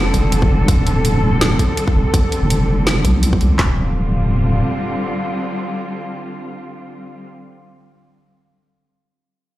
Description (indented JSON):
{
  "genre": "half-time drum and bass",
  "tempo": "165 BPM",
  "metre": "4/4",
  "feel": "swing 56% on 16ths, half-time",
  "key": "D minor",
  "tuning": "A4 = 441 Hz",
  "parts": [
    { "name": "muted chamber cello section", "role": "sustained chords", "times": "0.0-7.3 s", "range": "D3 to A4", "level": "-22 LUFS", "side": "equal", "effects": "vintage 12-bit sampler grit, sidechain pumping" },
    { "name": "deep soft wobble bass", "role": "bass", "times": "0.0-4.6 s", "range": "D1 to C2", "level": "-16 LUFS", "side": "equal", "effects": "chorus" },
    { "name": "drum and bass drum kit", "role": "drums", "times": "0.1-3.7 s", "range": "handclaps, kick drum, snare drum", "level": "-16 LUFS", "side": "equal", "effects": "none" },
    { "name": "drum and bass drum kit", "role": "drums", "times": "0.1-3.5 s", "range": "hi-hat, snare drum", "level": "-22 LUFS", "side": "right 1 dB", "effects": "none" }
  ],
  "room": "light reverb",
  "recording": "played on a big sound system in a bare room, large studio reverb",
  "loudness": "-14 LUFS",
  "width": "side -15 dB against mid",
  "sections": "0.0-3.6 A section; 3.6-6.5 B section",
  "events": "none",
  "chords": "0.0 Dm"
}